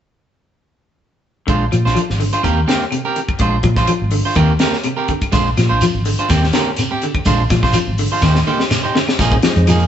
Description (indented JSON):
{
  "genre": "afrobeat",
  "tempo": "125 BPM",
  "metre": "4/4",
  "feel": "straight",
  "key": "Bb mixolydian",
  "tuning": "A4 = 439 Hz",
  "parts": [
    { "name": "semi-hollow electric guitar", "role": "arpeggios", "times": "1.5-9.8 s", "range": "C3 to F3", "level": "-21 LUFS", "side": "left 2 dB", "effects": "tremolo" },
    { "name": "electric guitar at the edge of break-up", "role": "stabs", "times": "1.5-9.8 s", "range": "F3 to C5", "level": "-19 LUFS", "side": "right 2 dB", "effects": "none" },
    { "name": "hollow-body short-scale fingered electric bass", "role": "bass", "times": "1.5-9.8 s", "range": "Ab1 to Bb2", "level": "-17 LUFS", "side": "equal", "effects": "none" },
    { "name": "tight funk drum kit", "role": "drums", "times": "1.5-9.9 s", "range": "hi-hat, kick drum, snare drum", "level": "-20 LUFS", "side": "left 1 dB", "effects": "none" },
    { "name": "claves", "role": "percussion", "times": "1.7-9.8 s", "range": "none", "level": "-32 LUFS", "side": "left 1 dB", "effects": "none" },
    { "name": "shekere", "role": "percussion", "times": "5.3-9.8 s", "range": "none", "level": "-23 LUFS", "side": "right 1 dB", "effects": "none" },
    { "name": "percussive tonewheel organ", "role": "accompaniment", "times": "9.3-9.8 s", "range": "Ab3 to Eb4", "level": "-21 LUFS", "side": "equal", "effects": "slow rotary speaker" }
  ],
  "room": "moderate stone room reverb, RT60 1.3 s",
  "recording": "band playing live in one room, nothing above 8.0 kHz",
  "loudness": "-13 LUFS",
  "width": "side -10 dB against mid",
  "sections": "1.5-9.2 A section",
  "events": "drum fill 8.2-9.2",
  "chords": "1.5 Bb9; 2.4 Eb6; 3.4 Bb9; 4.4 Eb6; 5.3 Bb9; 6.3 Eb6; 7.3 Bb9; 8.2 Eb6; 9.2 Bb7sus4",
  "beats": "| 1.49 1.97 2.45 2.93 | 3.41 3.89 4.37 4.86 | 5.34 5.82 6.30 6.78 | 7.26 7.74 8.23 8.71 | 9.19 9.67"
}